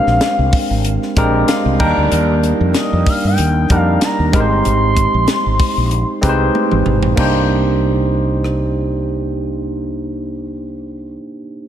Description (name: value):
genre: polished 1980s jazz-funk pop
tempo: 95 BPM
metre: 4/4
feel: swing 54% on 16ths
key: C minor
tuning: A4 = 441 Hz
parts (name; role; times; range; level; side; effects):
- expressive portamento lead; melody; 0.0-6.6 s; Eb5 to C6; -20 LUFS; left 1 dB; chorus, ping-pong delay
- barky tine electric piano; accompaniment; 0.0-11.7 s; G3 to G5; -18 LUFS; right 1 dB; overdrive, lush chorus
- mellow fretless electric bass; bass; 0.1-11.2 s; G1 to G2; -17 LUFS; equal; none
- crisp fusion drum kit; drums; 0.1-8.6 s; crash cymbal, hi-hat, kick drum, rim click, snare drum, toms; -19 LUFS; equal; none
room: moderate church reverb, RT60 3.3 s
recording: dreamy mix soaked in reverb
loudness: -13 LUFS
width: side -10 dB against mid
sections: 0.0-7.2 A section; 7.2-9.7 B section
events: tine electric piano fill 1.2-2.1; drum fill 6.5-7.2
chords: 0.0 Bb13; 1.8 Ebmaj7; 4.3 Abmaj7; 7.2 Cm9